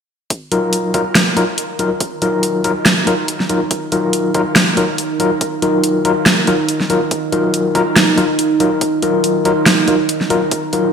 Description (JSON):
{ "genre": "deep dubstep", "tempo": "141 BPM", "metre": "4/4", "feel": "swing 56% on 16ths, half-time", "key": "Eb minor", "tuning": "A4 = 440 Hz", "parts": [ { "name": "deep dark ambient pad", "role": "sustained chords", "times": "2.0-10.9 s", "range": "Eb4", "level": "-20 LUFS", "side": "right 4 dB", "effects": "chorus, built-in reverb" }, { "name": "deep house drum kit", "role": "drums", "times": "0.3-10.8 s", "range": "hi-hat, snare drum", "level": "-15 LUFS", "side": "right 1 dB", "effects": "gated reverb" }, { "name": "electronic kick drum", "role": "drums", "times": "0.3-10.6 s", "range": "none", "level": "-25 LUFS", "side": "right 1 dB", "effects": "high-pass filter on kick" }, { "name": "overdriven tine electric piano", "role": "stabs", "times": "0.5-10.9 s", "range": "Gb3 to Bb4", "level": "-16 LUFS", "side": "left 2 dB", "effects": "fast tremolo, low-pass filter, dub echo" } ], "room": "wet lush hall reverb, RT60 1.8 s", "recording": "bright 1980s-style digital production", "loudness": "-13 LUFS", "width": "side -6 dB against mid", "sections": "0.3-10.9 A section", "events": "none", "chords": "0.3 Ebmadd9" }